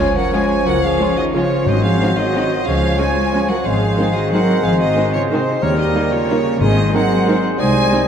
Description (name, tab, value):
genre	classical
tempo	182 BPM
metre	3/4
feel	uneven beats, rubato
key	unclear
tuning	A4 = 440 Hz
part	rich chamber violin section	melody	0.0-8.1 s	C5 to Ab5	-23 LUFS	equal	none
part	clear oboe	second line	0.0-8.1 s	Bb4 to Eb5	-26 LUFS	left 1 dB	none
part	concert flute	second line	0.0-8.1 s	Eb4 to Db5	-23 LUFS	right 4 dB	none
part	rich chamber violin section	second line	0.0-8.0 s	Bb3 to F4	-27 LUFS	left 1 dB	none
part	mellow bassoon	accompaniment	0.0-8.1 s	F3 to Ab3	-23 LUFS	left 3 dB	none
part	rich studio viola section	accompaniment	0.0-8.0 s	Eb3 to Ab3	-26 LUFS	right 2 dB	none
part	dark French horn section	sustained chords	0.0-8.1 s	F3 to Eb4	-23 LUFS	equal	none
part	rich symphonic cello section	bass	0.0-8.0 s	C3 to Ab3	-22 LUFS	equal	none
part	rich symphonic double bass section	bass	0.7-7.9 s	Ab1 to Eb2	-23 LUFS	equal	none
part	timpani	percussion	1.7-2.1, 5.6-7.1 s	Ab2 to Eb3	-23 LUFS	left 2 dB	none
room	wet cathedral reverb, RT60 4.6 s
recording	in a vast, echoing space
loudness	-14 LUFS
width	side -8 dB against mid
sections	0.0-8.1 A section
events	none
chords	0.0 Db; 1.7 Ab7; 2.7 Db; 3.6 Ab; 5.6 Eb7; 6.6 Ab